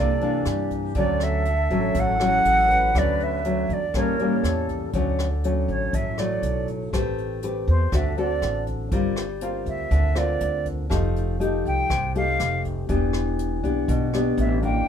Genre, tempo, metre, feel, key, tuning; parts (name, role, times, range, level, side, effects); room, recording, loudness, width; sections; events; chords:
bossa nova; 121 BPM; 4/4; straight; D major; A4 = 439 Hz
concert flute; melody; 0.0-14.9 s; C5 to G5; -24 LUFS; right 2 dB
mellow hollow flute section; second line; 0.0-4.9 s; G4 to B4; -32 LUFS; left 1 dB
nylon-string guitar; accompaniment; 0.0-14.9 s; A2 to B4; -25 LUFS; left 2 dB
upright bass; bass; 0.0-14.8 s; E1 to G2; -26 LUFS; equal
jazz brush drum kit; drums; 0.2-14.7 s; hi-hat, kick drum, rim click; -31 LUFS; equal
light reverb; minimal, uncompressed stereo recording; -21 LUFS; side -8 dB against mid
0.0-4.9 A section; 4.9-14.9 B section
flute solo 4.9-14.9
0.0 C9; 1.0 Dmaj7; 3.9 A7b9; 4.9 Dmaj7; 6.9 Am9; 7.9 D7; 8.9 Gm7; 10.9 F9; 12.9 Em7